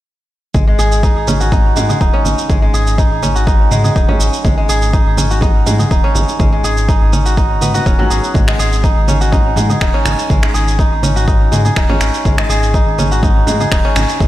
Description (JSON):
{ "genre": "afro house", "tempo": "123 BPM", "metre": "4/4", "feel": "straight", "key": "G# minor pentatonic", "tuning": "A4 = 442 Hz", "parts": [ { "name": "kora", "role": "arpeggios", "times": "0.5-14.3 s", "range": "F#3 to G#4", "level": "-17 LUFS", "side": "equal", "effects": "sidechain pumping, diffuse ambient delay" }, { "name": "dark detuned saw bass", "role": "bass", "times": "0.5-14.3 s", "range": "D#1 to G#2", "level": "-16 LUFS", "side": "equal", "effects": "sidechain pumping" }, { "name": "electronic kick drum", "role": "drums", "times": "0.5-14.3 s", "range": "none", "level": "-14 LUFS", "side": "equal", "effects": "overdrive" }, { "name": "electronic shaker and finger snaps", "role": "drums", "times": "0.5-14.3 s", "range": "none", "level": "-22 LUFS", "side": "right 2 dB", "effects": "none" }, { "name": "congas", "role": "percussion", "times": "0.5-14.3 s", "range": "none", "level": "-21 LUFS", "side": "right 2 dB", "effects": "none" } ], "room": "light reverb", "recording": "none", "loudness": "-11 LUFS", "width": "side -14 dB against mid", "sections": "0.5-14.3 A section", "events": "none", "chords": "0.5 G#m7", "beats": "| 0.55 1.03 1.52 2.01 | 2.50 2.98 3.47 3.96 | 4.45 4.94 5.42 5.91 | 6.40 6.89 7.38 7.86 | 8.35 8.84 9.33 9.81 | 10.30 10.79 11.28 11.77 | 12.25 12.74 13.23 13.72 | 14.20" }